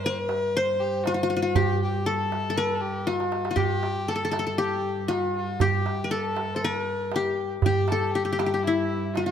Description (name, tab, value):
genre	Arabic maqam ensemble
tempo	118 BPM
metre	4/4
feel	straight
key	G maqam rast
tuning	A4 = 440 Hz
part	qanun	melody	0.0-9.3 s	E4 to C5	-26 LUFS	left 3 dB	none
part	dark violin	second line	0.0-9.3 s	E4 to C5	-31 LUFS	left 3 dB	none
part	rich double bass	drone	0.0-9.3 s	G2	-34 LUFS	right 2 dB	none
part	darbuka	percussion	0.0-9.3 s	none	-28 LUFS	right 6 dB	none
room	light reverb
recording	close, detailed microphones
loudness	-23 LUFS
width	side -8 dB against mid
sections	0.0-9.3 A section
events	drum fill 3.1-3.6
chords	none